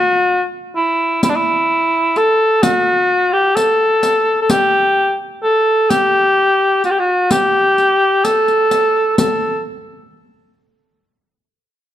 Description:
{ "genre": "Turkish makam ensemble", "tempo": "128 BPM (eighths)", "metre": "10/8", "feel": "straight", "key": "unclear", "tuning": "A4 = 440 Hz", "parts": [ { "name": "mellow cor anglais", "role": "melody", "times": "0.0-9.6 s", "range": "D4 to A4", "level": "-13 LUFS", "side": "equal", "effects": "none" }, { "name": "riq", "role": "percussion", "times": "1.2-9.6 s", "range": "none", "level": "-20 LUFS", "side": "left 1 dB", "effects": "none" } ], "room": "moderate recital hall reverb, RT60 1.6 s", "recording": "dark, warm production", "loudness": "-12 LUFS", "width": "side -11 dB against mid", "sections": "0.0-9.2 A section; 9.2-11.9 B section", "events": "none", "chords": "none", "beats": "0.28 0.75 1.22 1.69 2.16 2.62 3.09 3.56 4.03 | 4.50 4.97 5.43 5.90 6.37 6.84 7.31 7.78 8.25 8.71 | 9.18" }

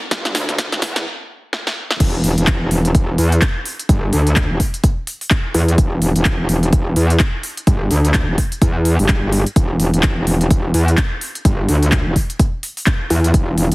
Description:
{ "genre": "bass house", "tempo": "127 BPM", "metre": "4/4", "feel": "swing 59% on 16ths", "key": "E minor", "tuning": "A4 = 441 Hz", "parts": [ { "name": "metallic wobble bass", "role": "bass", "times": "0.1-13.7 s", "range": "E1 to E2", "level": "-15 LUFS", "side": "equal", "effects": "distortion, chorus, overdrive, sidechain pumping" }, { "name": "big-room dance drum kit", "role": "drums", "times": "0.1-13.7 s", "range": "crash cymbal, handclaps, hi-hat, snare drum", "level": "-22 LUFS", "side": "equal", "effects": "none" }, { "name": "electronic kick drum", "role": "drums", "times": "0.1-13.5 s", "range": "none", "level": "-16 LUFS", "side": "equal", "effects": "none" } ], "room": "little or no reverb", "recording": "heavily compressed radio sound, multiband compression, high-pass filter", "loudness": "-14 LUFS", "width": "side -22 dB against mid", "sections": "0.0-2.0 A section; 2.0-13.7 B section", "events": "build-up 0.0-2.0; drum fill 0.0-1.1, 1.5-2.0; stop 1.1-2.0; drop 2.0-13.7", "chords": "none", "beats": "| 0.11 0.58 1.06 1.53 | 2.00 2.47 2.95 3.42 | 3.89 4.36 4.84 5.31 | 5.78 6.25 6.73 7.20 | 7.67 8.14 8.62 9.09 | 9.56 10.03 10.51 10.98 | 11.45 11.92 12.39 12.87 | 13.34" }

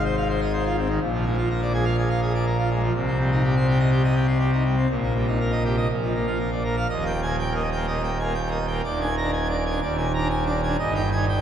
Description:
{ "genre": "classical, organ toccata", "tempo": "124 BPM", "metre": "4/4", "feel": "straight", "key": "Eb major", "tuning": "A4 = 440 Hz", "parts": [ { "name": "pipe organ, full organ", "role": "solo", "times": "0.0-11.4 s", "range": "Eb1 to Bb5", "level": "-21 LUFS", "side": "equal", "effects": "none" } ], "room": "wet cathedral reverb, RT60 4.5 s", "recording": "heard from further back in the room", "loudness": "-21 LUFS", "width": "side -9 dB against mid", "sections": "0.0-6.9 A section; 6.9-11.4 B section", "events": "none", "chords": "0.0 Fm7/Ab; 1.0 Bb7; 2.9 Cm; 4.9 Eb/Bb; 5.9 Bb; 6.9 Eb; 8.8 Bb7/Eb; 10.8 Eb/G", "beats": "0.06 0.54 | 1.02 1.50 1.98 2.46 | 2.95 3.43 3.92 4.40 | 4.90 5.40 5.90 6.40 | 6.89 7.38 7.87 8.36 | 8.84 9.33 9.81 10.30 | 10.79 11.27" }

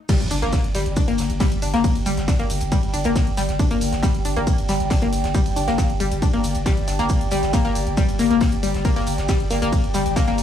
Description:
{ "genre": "driving peak-time techno", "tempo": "137 BPM", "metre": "4/4", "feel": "straight", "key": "G minor", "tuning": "A4 = 440 Hz", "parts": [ { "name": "analog pluck", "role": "riff", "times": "0.1-10.3 s", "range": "G3 to D4", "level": "-23 LUFS", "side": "left 3 dB", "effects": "chorus, phaser, tube saturation, sidechain pumping, tape echo" }, { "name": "electronic kick drum", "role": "drums", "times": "0.1-10.3 s", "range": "none", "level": "-21 LUFS", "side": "equal", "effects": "none" }, { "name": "techno drum kit", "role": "drums", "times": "0.1-10.4 s", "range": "crash cymbal, hi-hat, ride cymbal", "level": "-33 LUFS", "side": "right 2 dB", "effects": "sidechain pumping on hats, sidechain pumping on cymbals" }, { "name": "tight funk drum kit", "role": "drums", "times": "0.1-10.4 s", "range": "hi-hat, shaker, snare drum", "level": "-34 LUFS", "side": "left 2 dB", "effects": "sidechain pumping on hats, high-pass filter on hats, high-pass filter on snare, sidechain pumping on perc, high-pass filter on perc, high-pass filter on room" }, { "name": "impact", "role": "sound effects", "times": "0.1-1.8 s", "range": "none", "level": "-28 LUFS", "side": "equal", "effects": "none" }, { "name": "warbly tape-like pad", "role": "texture", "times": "0.9-10.4 s", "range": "G4 to G5", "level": "-29 LUFS", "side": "right 2 dB", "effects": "chorus, built-in reverb, sidechain pumping" }, { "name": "saturated sub bass", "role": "bass", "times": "0.2-10.4 s", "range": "G1", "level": "-27 LUFS", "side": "equal", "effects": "overdrive, sidechain pumping, low-pass filter" } ], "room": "small room ambience", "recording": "dry, gritty hardware recording, transformer saturation", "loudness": "-18 LUFS", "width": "side -10 dB against mid", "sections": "0.1-10.4 A section", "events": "drop 0.1-10.4; impact 0.1-1.8", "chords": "0.1 G5", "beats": "| 0.09 0.53 0.97 1.40 | 1.84 2.28 2.72 3.16 | 3.59 4.03 4.47 4.91 | 5.35 5.78 6.22 6.66 | 7.10 7.54 7.97 8.41 | 8.85 9.29 9.72 10.16" }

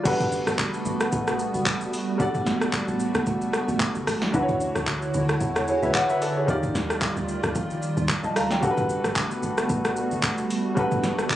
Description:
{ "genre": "amapiano", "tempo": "112 BPM", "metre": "4/4", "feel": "swing 55% on 16ths", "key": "G lydian", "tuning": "A4 = 440 Hz", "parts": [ { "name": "clear baby grand piano", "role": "accompaniment", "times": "0.0-11.4 s", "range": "D3 to Bb5", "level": "-26 LUFS", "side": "left 1 dB", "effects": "none" }, { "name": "hollow soft pad", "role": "sustained chords", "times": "0.0-11.4 s", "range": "D3 to D5", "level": "-28 LUFS", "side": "right 2 dB", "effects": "ensemble chorus, sidechain pumping" }, { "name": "deep log drum bass", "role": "bass", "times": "0.1-11.4 s", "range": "F#1 to E2", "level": "-32 LUFS", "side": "equal", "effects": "none" }, { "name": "deep house drum kit", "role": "drums", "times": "0.1-11.4 s", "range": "crash cymbal, handclaps, hi-hat, kick drum, rim click, shaker, snare drum, toms", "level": "-26 LUFS", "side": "equal", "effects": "overdrive, vintage 12-bit sampler grit" } ], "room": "light reverb", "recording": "recorded on a phone in the room, club reverb, compression, nothing above 10.9 kHz", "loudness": "-22 LUFS", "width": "side -13 dB against mid", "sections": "0.1-11.4 A section", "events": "drop 0.1-11.4", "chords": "0.1 Gmaj9; 4.3 Dmaj9; 6.5 Ebmaj9; 8.6 Gmaj9", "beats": "| 0.06 0.59 1.13 1.66 | 2.20 2.73 3.27 3.81 | 4.34 4.88 5.41 5.95 | 6.48 7.02 7.55 8.09 | 8.63 9.16 9.70 10.23 | 10.77 11.30" }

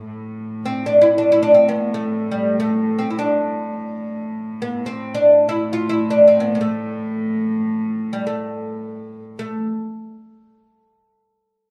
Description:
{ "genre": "arabic", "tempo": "free time", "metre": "none", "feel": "none", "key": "A maqam bayati", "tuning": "A4 = 441 Hz", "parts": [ { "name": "oud", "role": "melody", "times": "0.0-9.7 s", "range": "G3 to F4", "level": "-19 LUFS", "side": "equal", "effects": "none" }, { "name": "warm chamber cello section", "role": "drone", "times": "0.0-9.5 s", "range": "A2", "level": "-26 LUFS", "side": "equal", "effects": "none" } ], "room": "wet studio reverb, RT60 0.6 s", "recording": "lossy compression artefacts", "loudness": "-19 LUFS", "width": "mono", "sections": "0.0-9.4 A section; 9.4-11.7 B section", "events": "none", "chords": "none", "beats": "free time" }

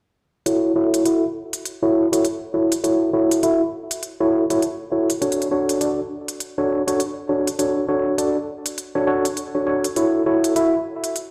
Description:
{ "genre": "glitch hop", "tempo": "101 BPM", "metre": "4/4", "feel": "swing 60% on 16ths", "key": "F# minor", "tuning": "A4 = 440 Hz", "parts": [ { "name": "tine electric piano", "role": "stabs", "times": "0.5-10.7 s", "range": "D4 to E5", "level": "-21 LUFS", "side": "equal", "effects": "low-pass filter, delay" }, { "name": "electronic hi-hat", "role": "drums", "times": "0.5-11.3 s", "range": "none", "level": "-29 LUFS", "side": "equal", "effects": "none" } ], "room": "wet studio reverb, RT60 0.7 s", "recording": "played on a big sound system in a bare room, large studio reverb", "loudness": "-21 LUFS", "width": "mono", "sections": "0.5-11.3 A section", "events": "filter sweep on tine electric piano 0.5-11.3", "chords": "0.5 F#m7; 5.2 Dmaj7; 10.0 F#m7", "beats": "| 0.46 1.05 1.65 2.24 | 2.84 3.43 4.03 4.62 | 5.21 5.81 6.40 7.00 | 7.59 8.18 8.78 9.37 | 9.97 10.56 11.15" }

